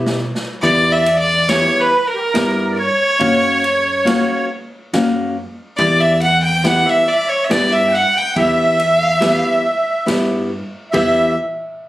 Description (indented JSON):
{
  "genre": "klezmer",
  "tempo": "70 BPM",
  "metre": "3/4",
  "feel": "straight",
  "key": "E dorian sharp4",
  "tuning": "A4 = 440 Hz",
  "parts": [
    { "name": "nylon-string guitar", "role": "accompaniment", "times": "0.0-11.3 s", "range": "A#3 to G4", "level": "-18 LUFS", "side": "left 2 dB", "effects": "none" },
    { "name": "upright bass", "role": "bass", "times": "0.0-11.3 s", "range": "B1 to G2", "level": "-24 LUFS", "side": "equal", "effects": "none" },
    { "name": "street-band drum kit", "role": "drums", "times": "0.1-11.1 s", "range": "crash cymbal, kick drum, ride cymbal, snare drum", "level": "-26 LUFS", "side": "equal", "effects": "none" },
    { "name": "bright violin", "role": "melody", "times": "0.6-11.3 s", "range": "A#4 to G5", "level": "-16 LUFS", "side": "equal", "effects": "none" },
    { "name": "musette accordion", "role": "second line", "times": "0.6-11.3 s", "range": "G4 to G5", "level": "-20 LUFS", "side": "right 2 dB", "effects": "none" }
  ],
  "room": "moderate studio reverb, RT60 0.6 s",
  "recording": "recorded on a phone in the room, studio ambience, compression",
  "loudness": "-13 LUFS",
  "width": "side -15 dB against mid",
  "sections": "0.6-10.9 A section",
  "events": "drum fill 0.0-0.6",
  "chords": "0.0 Em; 3.2 F#; 5.8 Em",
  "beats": "| 0.62 1.48 2.34 | 3.20 4.06 4.92 | 5.78 6.64 7.50 | 8.36 9.22 10.08 | 10.94"
}